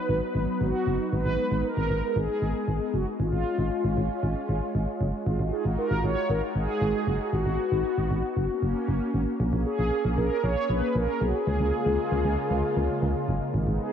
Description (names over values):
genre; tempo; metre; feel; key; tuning
synth-pop; 116 BPM; 4/4; straight; unclear; A4 = 444 Hz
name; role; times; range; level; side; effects
mellow synth brass; melody; 0.0-13.9 s; E#4 to C#5; -29 LUFS; right 1 dB; chorus, ping-pong delay
lush unison pad; sustained chords; 0.0-13.9 s; C#3 to G#4; -30 LUFS; left 1 dB; chorus, phaser
solid FM bass; bass; 0.1-13.8 s; F#1 to C#2; -26 LUFS; equal; none
room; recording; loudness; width
moderate church reverb, RT60 3.5 s; dreamy mix soaked in reverb, cassette tape; -24 LUFS; side -8 dB against mid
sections
0.0-9.4 A section; 9.4-13.9 B section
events
none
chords
0.0 B; 3.2 C#/G#; 5.3 D#madd9/G#; 7.3 B/G#; 8.4 F#; 9.4 A#m7; 11.5 C#6